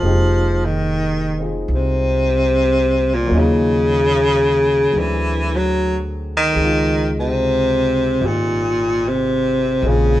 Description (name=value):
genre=jazz ballad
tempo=73 BPM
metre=4/4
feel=swing 69% on 8ths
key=unclear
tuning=A4 = 441 Hz
part: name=warm baritone saxophone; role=melody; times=0.0-10.2 s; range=Bb2 to F#3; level=-16 LUFS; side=equal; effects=none
part: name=warm upright piano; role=accompaniment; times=0.0-10.2 s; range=Gb3 to Ab4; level=-25 LUFS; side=left 2 dB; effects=none
part: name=upright bass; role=bass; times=0.0-10.2 s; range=F1 to Eb2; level=-21 LUFS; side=equal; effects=none
room=moderate stone room reverb, RT60 1.1 s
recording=band playing live in one room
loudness=-15 LUFS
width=side -14 dB against mid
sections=0.0-10.2 A section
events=none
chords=0.0 Fm11; 3.3 Ebm9; 4.9 D7#11; 6.6 Dbmaj9